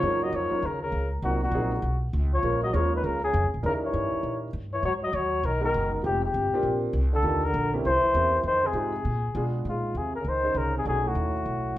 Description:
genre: jazz.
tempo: 200 BPM.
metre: 4/4.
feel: swing 62% on 8ths.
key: unclear.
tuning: A4 = 441 Hz.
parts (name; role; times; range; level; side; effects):
breathy flugelhorn; melody; 0.0-11.8 s; F4 to Eb5; -27 LUFS; left 2 dB; none.
warm trombone; second line; 0.0-11.8 s; Ab2 to Gb3; -33 LUFS; right 2 dB; none.
warm grand piano; accompaniment; 0.0-11.3 s; Gb3 to C5; -32 LUFS; right 2 dB; none.
upright bass; bass; 0.0-11.7 s; F1 to Cb3; -29 LUFS; equal; none.
room: wet club reverb, RT60 0.8 s.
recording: heard from further back in the room.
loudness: -24 LUFS.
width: side -14 dB against mid.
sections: 0.0-9.7 A section; 9.7-11.8 B section.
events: none.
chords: 0.0 Ebm9; 1.2 Cm7b5; 1.8 Bsus2; 2.4 Bbm7; 3.6 Eb7b9; 4.8 Abm9; 6.0 Fm9; 6.6 Bbadd9; 7.2 Ebmaj9; 7.8 C7b9; 8.4 Fm7; 9.0 Bb7b9; 9.7 Bbm11; 10.9 B9.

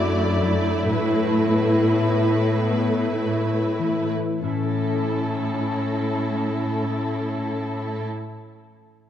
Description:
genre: cinematic, emotional film score for orchestra.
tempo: 46-62 BPM.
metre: 3/4.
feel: rubato.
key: A major.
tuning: A4 = 440 Hz.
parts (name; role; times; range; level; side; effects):
dark duduk; melody; 0.0-8.1 s; B3 to F#4; -26 LUFS; left 1 dB; none.
warm symphonic violin section; melody; 0.0-8.1 s; A4 to D5; -30 LUFS; left 3 dB; none.
warm symphonic viola section; accompaniment; 0.0-8.1 s; A3 to E4; -27 LUFS; right 1 dB; none.
concert harp; arpeggios; 0.0-8.3 s; F#2 to E5; -29 LUFS; left 6 dB; none.
rich symphonic cello section; bass; 0.0-8.1 s; F#2 to A2; -26 LUFS; right 2 dB; none.
room: moderate scoring stage reverb, RT60 2.2 s.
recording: dark, warm production.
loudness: -20 LUFS.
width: side -10 dB against mid.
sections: 0.0-4.4 A section; 4.4-8.3 B section.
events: slowing down 0.0-4.4.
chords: 0.0 Dadd9/F#; 0.9 Asus2; 4.4 A.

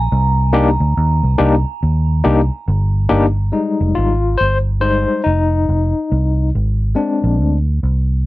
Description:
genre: lovers rock reggae.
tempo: 70 BPM.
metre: 4/4.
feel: swing 61% on 16ths.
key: F dorian.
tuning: A4 = 440 Hz.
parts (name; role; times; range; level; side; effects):
vibraphone with soft mallets; melody; 0.0-1.6 s; Bb5; -24 LUFS; right 4 dB; tape echo.
vintage muted fingered electric bass; bass; 0.0-8.3 s; F1 to Eb2; -15 LUFS; equal; none.
overdriven tine electric piano; accompaniment; 0.5-7.6 s; G3 to C5; -16 LUFS; left 3 dB; fast tremolo.
room: little or no reverb.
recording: dry, close 1970s-style studio recording.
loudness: -13 LUFS.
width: side -17 dB against mid.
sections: 0.0-3.5 A section; 3.5-8.3 B section.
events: tine electric piano solo 3.5-8.3.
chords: 0.1 Cm7; 3.5 Fm7; 7.0 Bb7.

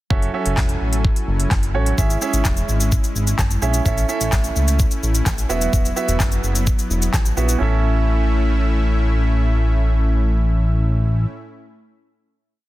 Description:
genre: dance-pop.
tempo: 128 BPM.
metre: 4/4.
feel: straight.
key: A major.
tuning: A4 = 442 Hz.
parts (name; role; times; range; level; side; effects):
warm grand piano; accompaniment; 0.1-11.3 s; B3 to E5; -25 LUFS; right 5 dB; sidechain pumping.
soft supersaw; sustained chords; 0.1-11.3 s; A2 to G#5; -26 LUFS; left 1 dB; sidechain pumping.
chorused synth bass; bass; 0.1-11.3 s; E1 to C#2; -18 LUFS; equal; sidechain pumping.
pop drum kit; drums; 0.1-7.6 s; handclaps, hi-hat, kick drum, shaker, snare drum; -20 LUFS; equal; none.
room: digital ambience.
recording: dense, heavily limited modern master.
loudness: -16 LUFS.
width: side -16 dB against mid.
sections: 0.1-7.6 bridge; 7.6-11.4 final chord.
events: none.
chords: 0.1 F#m7; 2.0 C#m; 3.9 A; 5.5 Esus2; 7.6 A.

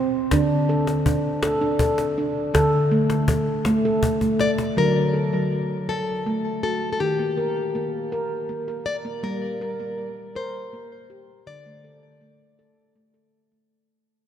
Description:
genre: world meditative, meditative tuned percussion.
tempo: 54 BPM (dotted quarters).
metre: 6/8.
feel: straight.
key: D phrygian dominant.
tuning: A4 = 440 Hz.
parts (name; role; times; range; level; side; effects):
handpan; arpeggios; 0.0-13.7 s; C3 to Bb4; -22 LUFS; right 1 dB; none.
cajon; percussion; 0.3-4.8 s; none; -28 LUFS; left 2 dB; none.
nylon-string guitar; melody; 4.4-12.9 s; G4 to D5; -28 LUFS; left 5 dB; tape echo.
room: wet cathedral reverb, RT60 6.0 s.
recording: in a vast, echoing space.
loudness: -20 LUFS.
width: side -9 dB against mid.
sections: 0.0-4.8 A section; 4.8-13.7 B section.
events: drum fill 4.2-4.8; fade-out 4.8-13.7.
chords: 0.3 D5; 4.8 D; 7.0 Eb; 9.2 Gm; 11.5 D5.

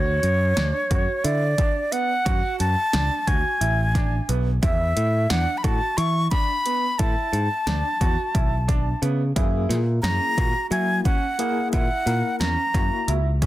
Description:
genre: progressive instrumental, band music in an uneven meter.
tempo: 177 BPM (eighths).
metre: 7/8.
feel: straight.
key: E mixolydian.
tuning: A4 = 440 Hz.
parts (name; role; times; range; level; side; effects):
breathy bright concert flute; melody; 0.0-13.1 s; C#5 to C#6; -24 LUFS; equal; none.
bright concert grand piano; arpeggios; 0.0-13.5 s; A#3 to F#4; -31 LUFS; right 8 dB; digital delay.
picked electric bass; bass; 0.0-13.5 s; A1 to F#3; -23 LUFS; equal; none.
punchy analog drum machine; drums; 0.2-13.5 s; hi-hat, kick drum, snare drum; -24 LUFS; equal; overdrive.
overdriven tine electric piano; accompaniment; 9.4-13.5 s; A#3 to C#5; -30 LUFS; left 6 dB; fast tremolo.
room: little or no reverb.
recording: dense, heavily limited modern master.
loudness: -20 LUFS.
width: side -15 dB against mid.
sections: 0.0-13.5 A section.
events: tine electric piano fill 13.1-13.5.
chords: 0.0 Dmaj7; 4.6 E7sus4; 9.4 F#7.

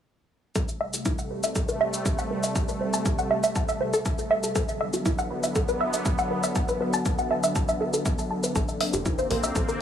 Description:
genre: melodic techno.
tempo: 120 BPM.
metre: 4/4.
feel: straight.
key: A dorian.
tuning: A4 = 439 Hz.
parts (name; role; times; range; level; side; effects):
sweeping resonant pad; sustained chords; 0.6-9.8 s; C3 to C4; -30 LUFS; equal; chorus, sidechain pumping.
tight sequenced synth; arpeggios; 0.6-9.7 s; E4 to A5; -27 LUFS; equal; chorus, sidechain pumping, dub echo.
electronic kick drum; drums; 0.6-9.7 s; none; -27 LUFS; equal; none.
electronic shaker and hi-hat; drums; 0.6-9.8 s; none; -34 LUFS; left 1 dB; none.
tight sequencer bass; bass; 8.6-9.7 s; F1 to Bb1; -32 LUFS; equal; sidechain pumping.
room: light reverb.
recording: small room ambience.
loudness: -24 LUFS.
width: side -9 dB against mid.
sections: 0.6-9.8 A section.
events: none.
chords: 0.6 Am7; 4.6 Bm; 8.6 Bbadd9.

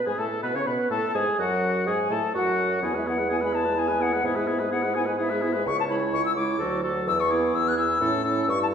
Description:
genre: quick classical-period movement for wind quintet.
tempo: 127 BPM.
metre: 3/4.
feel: rubato.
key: E major, A major from 5.7 s.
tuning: A4 = 440 Hz.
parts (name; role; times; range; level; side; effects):
clear clarinet; accompaniment; 0.0-8.7 s; E4 to C#5; -30 LUFS; right 6 dB; none.
silver concert flute; melody; 0.1-8.7 s; E5 to F#6; -27 LUFS; left 5 dB; none.
warm oboe; second line; 0.1-8.7 s; F#4 to C#5; -30 LUFS; left 2 dB; none.
mellow French horn; accompaniment; 0.1-8.5 s; F#3 to C#4; -31 LUFS; equal; none.
mellow bassoon; bass; 0.1-8.7 s; C#2 to C#3; -28 LUFS; right 1 dB; none.
room: wet recital hall reverb, RT60 1.6 s.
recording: heard from further back in the room.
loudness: -22 LUFS.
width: side -7 dB against mid.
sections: 0.0-8.7 A section.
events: none.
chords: 0.0 Amaj9/G#; 1.4 F#madd9; 2.8 E; 4.2 E/G#; 5.7 C#m; 6.6 D; 7.1 E; 8.0 A.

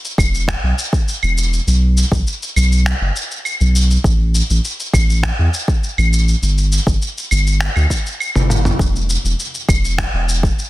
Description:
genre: sunset chillout.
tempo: 101 BPM.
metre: 4/4.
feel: straight.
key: unclear.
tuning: A4 = 444 Hz.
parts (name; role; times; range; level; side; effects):
dusty soul sampler-style drum kit; drums; 0.0-10.7 s; claves, finger snaps, shaker, toms; -20 LUFS; equal; soft clipping on snare.
warm sub bass; bass; 0.2-10.5 s; E1 to E2; -15 LUFS; equal; none.
electronic kick drum; drums; 0.2-10.6 s; none; -17 LUFS; equal; overdrive.
room: little or no reverb.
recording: dense, heavily limited modern master.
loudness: -14 LUFS.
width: side -17 dB against mid.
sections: 0.0-8.8 A section; 8.8-10.7 B section.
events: drum fill 8.4-8.8.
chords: none.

